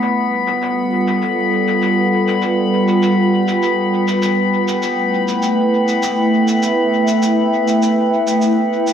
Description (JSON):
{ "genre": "ambient dub", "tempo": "100 BPM", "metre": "4/4", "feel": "straight", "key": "unclear", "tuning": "A4 = 440 Hz", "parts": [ { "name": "warbly tape-like pad", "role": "sustained chords", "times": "0.0-8.9 s", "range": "G3 to G5", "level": "-15 LUFS", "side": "right 1 dB", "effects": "chorus, built-in reverb" }, { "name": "shaker", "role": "drums", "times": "0.0-8.9 s", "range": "none", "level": "-29 LUFS", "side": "right 1 dB", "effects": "low-pass filter on perc, low-pass filter on room, dub echo" }, { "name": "drifting glass-harmonics texture", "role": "texture", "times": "0.0-8.9 s", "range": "B3 to B5", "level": "-20 LUFS", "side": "left 3 dB", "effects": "chorus, built-in reverb" } ], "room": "light reverb", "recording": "echo-heavy mix, vinyl crackle", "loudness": "-14 LUFS", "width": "side -8 dB against mid", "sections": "0.0-8.9 A section", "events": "filter sweep on drum 0.0-8.9; filter sweep on ambient pad 0.0-8.9", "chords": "0.0 G9; 4.8 Asus2" }